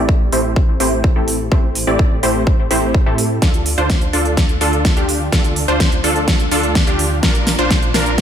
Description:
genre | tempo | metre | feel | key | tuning
EDM, festival progressive house | 126 BPM | 4/4 | straight | D minor | A4 = 440 Hz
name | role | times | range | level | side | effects
supersaw stab | riff | 0.0-8.2 s | A3 to D5 | -18 LUFS | equal | sidechain pumping, low-pass filter, ping-pong delay
wide detuned saw bass | bass | 0.0-8.2 s | A1 to A2 | -22 LUFS | equal | chorus, sidechain pumping
electronic kick drum | drums | 0.1-8.2 s | none | -15 LUFS | equal | studio reverb
big-room dance drum kit | drums | 0.3-8.2 s | hi-hat, snare drum | -20 LUFS | equal | studio reverb
room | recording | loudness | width
light reverb, digital ambience | none | -13 LUFS | side -9 dB against mid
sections
0.0-8.2 A section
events
build-up 0.0-8.2; filter sweep on supersaw synth 0.0-8.2; drum fill 3.4-8.2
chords
0.0 Am7; 3.4 Dm; 7.2 Bb

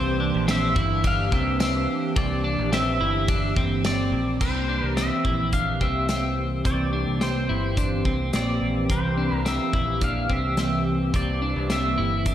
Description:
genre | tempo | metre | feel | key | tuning
dream pop | 107 BPM | 4/4 | straight | unclear | A4 = 439 Hz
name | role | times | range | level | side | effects
pedal steel guitar | melody | 0.0-12.3 s | C5 to F5 | -28 LUFS | left 1 dB | analog chorus, diffuse ambient delay
hollow soft pad | sustained chords | 0.0-12.3 s | E3 to G4 | -28 LUFS | right 2 dB | ensemble chorus
clean electric guitar | arpeggios | 0.0-12.3 s | C4 to E4 | -28 LUFS | left 1 dB | analog chorus, diffuse ambient delay
modern bright picked electric bass | bass | 0.0-12.3 s | G1 to C2 | -27 LUFS | equal | none
loose indie drum kit | drums | 0.5-12.3 s | crash cymbal, hi-hat, kick drum, ride cymbal, snare drum, tambourine | -28 LUFS | equal | none
room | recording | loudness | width
wet lush hall reverb, RT60 1.7 s, small room ambience | dreamy mix soaked in reverb | -21 LUFS | side -11 dB against mid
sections
0.0-4.4 A section; 4.4-12.3 B section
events
none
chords
0.0 C7

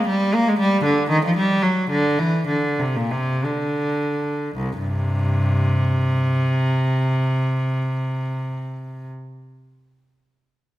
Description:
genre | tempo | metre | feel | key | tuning
classical, baroque-style suite movement for unaccompanied cello | 51-80 BPM (dotted quarters) | 6/8 | rubato | unclear | A4 = 440 Hz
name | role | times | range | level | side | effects
rich cello | solo | 0.0-9.1 s | C2 to Bb3 | -19 LUFS | equal | none
room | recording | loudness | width
wet recital hall reverb, RT60 1.5 s | none | -19 LUFS | side -15 dB against mid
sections
0.0-4.6 A section; 4.6-9.0 B section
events
slowing down 0.1-4.6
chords
none

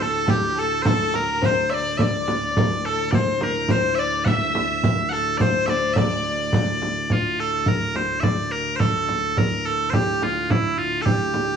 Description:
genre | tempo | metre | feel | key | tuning
medieval dance | 106 BPM | 2/4 | straight | unclear | A4 = 440 Hz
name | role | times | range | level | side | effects
loud bright bagpipes | melody | 0.0-11.6 s | E4 to F#5 | -23 LUFS | right 2 dB | none
clear fiddle | second line | 0.0-6.8 s | G4 to E5 | -26 LUFS | left 6 dB | none
pipe organ, cornet | drone | 0.0-11.6 s | D2 to A2 | -29 LUFS | left 1 dB | none
frame drum | percussion | 0.0-11.6 s | none | -23 LUFS | right 1 dB | none
riq | percussion | 0.3-6.8 s | none | -30 LUFS | right 2 dB | none
room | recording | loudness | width
light reverb | worn, warbling old tape, cassette tape, warbly pitch drift, studio reverb | -19 LUFS | side -7 dB against mid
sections
0.0-7.1 A section; 7.1-11.6 B section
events
none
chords
none

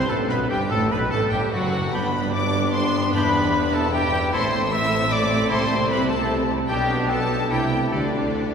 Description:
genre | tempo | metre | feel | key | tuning
classical, dramatic, fast romantic movement for symphony orchestra | 149 BPM | 3/4 | rubato | G major | A4 = 439 Hz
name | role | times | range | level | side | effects
warm symphonic violin section | melody | 0.0-8.5 s | D5 to E6 | -28 LUFS | left 2 dB | none
bright clarinet | second line | 0.0-8.1 s | D4 to B4 | -34 LUFS | left 2 dB | none
bright oboe | second line | 0.0-8.1 s | F#4 to C5 | -35 LUFS | right 1 dB | none
silver concert flute | second line | 0.0-8.5 s | D5 to E6 | -31 LUFS | left 1 dB | none
warm symphonic violin section | second line | 0.0-8.5 s | D4 to B4 | -33 LUFS | left 3 dB | none
warm symphonic viola section | accompaniment | 0.0-8.5 s | F#3 to E4 | -28 LUFS | right 1 dB | none
mellow French horn section | sustained chords | 0.0-8.5 s | F#3 to G4 | -30 LUFS | left 2 dB | none
concert harp | arpeggios | 0.0-8.5 s | E2 to D6 | -31 LUFS | left 5 dB | none
mellow trumpet | stabs | 0.0-8.5 s | D4 to E5 | -27 LUFS | right 1 dB | none
warm symphonic cello section | bass | 0.0-8.5 s | E2 to D3 | -29 LUFS | right 2 dB | none
warm symphonic double bass section | bass | 0.0-8.5 s | E1 to D2 | -30 LUFS | right 2 dB | none
warm tuba | bass | 0.0-8.5 s | E1 to D2 | -31 LUFS | right 2 dB | none
timpani | percussion | 0.0-0.1, 7.9-8.5 s | D3 | -34 LUFS | right 1 dB | none
room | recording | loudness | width
wet cathedral reverb, RT60 4.3 s | minimal, uncompressed stereo recording | -19 LUFS | side -6 dB against mid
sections
0.0-8.5 A section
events
none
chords
0.0 G; 0.7 D7/A; 1.9 G; 3.1 Em7; 4.3 Am; 5.5 Am/C; 6.7 G/B; 7.5 Am7/C; 7.9 Dsus4

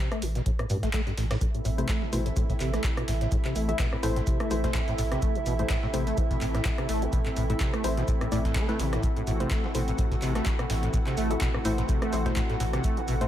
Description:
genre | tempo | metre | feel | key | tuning
acid house | 126 BPM | 4/4 | swing 55% on 16ths | A dorian | A4 = 438 Hz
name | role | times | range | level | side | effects
deep acid bass | riff | 0.0-13.2 s | G2 to A3 | -31 LUFS | equal | overdrive, ensemble chorus, sidechain pumping, tape echo
punchy analog drum machine | drums | 0.1-13.3 s | handclaps, hi-hat, rim click | -36 LUFS | equal | none
warm sub bass | bass | 0.2-13.3 s | A1 to A2 | -30 LUFS | equal | sidechain pumping
dusty soul sampler-style drum kit | drums | 0.2-13.2 s | hi-hat, shaker, snare drum | -43 LUFS | equal | high-pass filter on snare, sidechain pumping on perc, high-pass filter on perc, sidechain pumping on hats, high-pass filter on hats, high-pass filter on room
electronic kick drum | drums | 0.5-12.9 s | none | -28 LUFS | equal | none
lush unison pad | sustained chords | 1.4-13.3 s | C3 to F#4 | -33 LUFS | right 1 dB | chorus, sidechain pumping
filtered dub chord stab | stabs | 1.8-13.3 s | A3 to E5 | -33 LUFS | left 2 dB | chorus, tape echo
room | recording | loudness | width
digital ambience | none | -25 LUFS | side -11 dB against mid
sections
0.0-13.3 A section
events
none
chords
0.0 Am

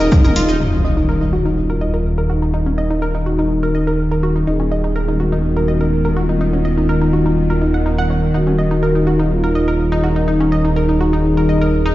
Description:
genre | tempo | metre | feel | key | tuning
melodic techno | 124 BPM | 4/4 | straight | Eb minor | A4 = 439 Hz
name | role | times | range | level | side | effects
expressive synth lead | melody | 0.0-11.9 s | Eb4 to Ab4 | -22 LUFS | equal | lush chorus, digital delay
big bright polysynth | second line | 0.0-0.5 s | Eb5 | -31 LUFS | left 5 dB | sidechain pumping, digital delay
dark analog pad | sustained chords | 0.0-11.9 s | Ab3 to Bb5 | -29 LUFS | equal | none
analog pluck | arpeggios | 0.0-11.9 s | Db4 to Bb5 | -21 LUFS | equal | chorus, sidechain pumping, digital delay
dark detuned saw bass | bass | 0.0-11.9 s | Eb1 | -17 LUFS | equal | sidechain pumping
deep house drum kit | drums | 0.0-0.6 s | hi-hat, shaker, toms | -23 LUFS | equal | overdrive, small room ambience
warbly tape-like pad | texture | 0.0-11.9 s | Cb4 to F5 | -26 LUFS | left 1 dB | chorus, built-in reverb, sidechain pumping
bowed-like drone | drone | 1.9-11.9 s | Eb3 | -24 LUFS | right 1 dB | built-in reverb, sidechain pumping
impact | sound effects | 0.6-2.5 s | none | -22 LUFS | equal | none
room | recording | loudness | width
moderate concert hall reverb, RT60 1.9 s | played on a big sound system in a bare room, stone room reverb, nothing above 7.6 kHz | -14 LUFS | side -15 dB against mid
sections
0.6-11.9 A section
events
impact 0.6-2.5; filter sweep on synth arpeggio sound 0.6-11.9; filter sweep on analog synth lead 0.6-11.9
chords
0.0 Db/Eb; 0.6 Ebm; 4.5 Abmadd9/Eb; 8.3 Ebm

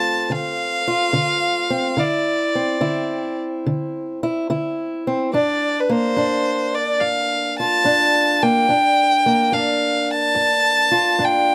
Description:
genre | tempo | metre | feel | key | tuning
acoustic country blues, solo or duo | 72 BPM | 4/4 | swing 68% on 8ths | D minor | A4 = 440 Hz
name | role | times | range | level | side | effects
warm fiddle | melody | 0.0-11.5 s | B4 to A5 | -20 LUFS | equal | none
fingerpicked steel-string acoustic guitar | accompaniment | 0.0-11.5 s | G2 to F4 | -24 LUFS | equal | none
room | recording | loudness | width
moderate booth ambience, RT60 0.2 s | none | -19 LUFS | mono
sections
0.0-11.5 A section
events
none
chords
0.0 Dm9; 5.3 Gm9

